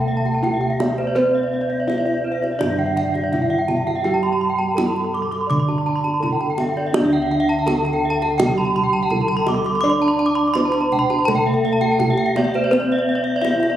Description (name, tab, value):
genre	Balinese gamelan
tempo	83 BPM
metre	4/4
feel	straight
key	D slendro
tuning	A4 = 439 Hz
part	gamelan-type bronze metallophone	melody	0.0-13.8 s	C4-45c to D5	-24 LUFS	equal	none
part	gamelan-type bronze metallophone	accompaniment	0.0-13.8 s	D3 to D4	-25 LUFS	right 2 dB	none
part	gamelan-type bronze metallophone	arpeggios	0.0-13.8 s	C5-45c to D6	-23 LUFS	left 1 dB	none
part	gamelan-type bossed gongs	bass	0.0-13.8 s	D2 to D5	-24 LUFS	equal	none
part	gamelan-type bronze metallophone	arpeggios	0.1-13.6 s	C5-45c to D6	-25 LUFS	right 3 dB	none
part	kendang	percussion	0.3-13.7 s	none	-26 LUFS	right 2 dB	none
room	wet recital hall reverb, RT60 1.8 s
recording	recorded on a phone in the room, club reverb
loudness	-17 LUFS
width	side -11 dB against mid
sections	0.0-13.8 A section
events	none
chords	none